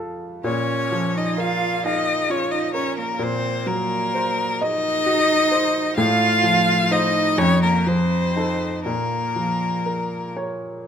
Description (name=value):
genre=classical, slow romantic movement for piano trio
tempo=43 BPM (dotted quarters)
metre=6/8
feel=uneven beats, rubato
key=Bb minor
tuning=A4 = 440 Hz
part: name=warm baby grand piano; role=accompaniment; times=0.0-10.9 s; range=F2 to F5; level=-23 LUFS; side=equal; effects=none
part: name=rich cello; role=second line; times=0.4-10.4 s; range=Bb3 to F4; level=-25 LUFS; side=right 9 dB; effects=none
part: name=rich violin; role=melody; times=0.5-10.3 s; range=Bb4 to F5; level=-22 LUFS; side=left 4 dB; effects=none
room=moderate recital hall reverb, RT60 1.4 s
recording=close, detailed microphones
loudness=-18 LUFS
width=side -8 dB against mid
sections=0.0-10.9 A section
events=none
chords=0.4 Bb5; 3.2 Cm7b5/Bb; 6.0 F7/A; 7.4 F7; 8.9 Bbm